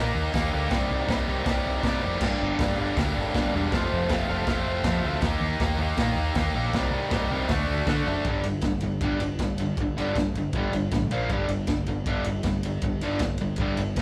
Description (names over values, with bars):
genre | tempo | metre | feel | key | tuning
garage rock duo or trio | 159 BPM | 4/4 | straight | G minor | A4 = 440 Hz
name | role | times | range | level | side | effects
raw garage guitar | riff | 0.0-14.0 s | F2 to G4 | -29 LUFS | equal | overdrive
growling picked electric bass | bass | 0.0-14.0 s | E1 to D3 | -32 LUFS | equal | overdrive
raw garage drum kit | drums | 0.3-14.0 s | crash cymbal, hi-hat, kick drum, ride cymbal, snare drum | -31 LUFS | equal | none
room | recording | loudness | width
moderate large studio reverb, RT60 1.0 s | band playing live in one room | -26 LUFS | mono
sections
0.0-8.3 A section; 8.3-14.0 B section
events
none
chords
0.0 Eb; 0.7 Cm; 2.2 Gm; 3.7 F; 5.2 Eb; 6.8 Cm; 7.5 D; 8.3 G5; 11.1 Bb5; 11.3 G5